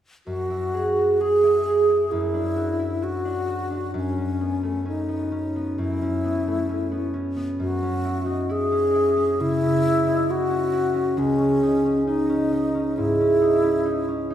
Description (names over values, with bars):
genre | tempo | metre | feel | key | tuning
classical, impressionist duo for alto flute and harp | 66 BPM | 4/4 | rubato | unclear | A4 = 438 Hz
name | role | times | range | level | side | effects
bright wooden-headed alto flute | melody | 0.3-14.3 s | C#4 to G#4 | -23 LUFS | left 1 dB | none
concert harp | accompaniment | 0.3-14.3 s | C#2 to G#4 | -23 LUFS | right 1 dB | none
room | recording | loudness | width
wet concert hall reverb, RT60 2.3 s | recorded in a church or concert hall | -20 LUFS | side -10 dB against mid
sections
0.3-14.3 A section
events
none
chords
0.3 F#sus2; 2.1 D/F#; 4.0 A69/F#; 7.6 F#9sus4; 11.2 C#madd9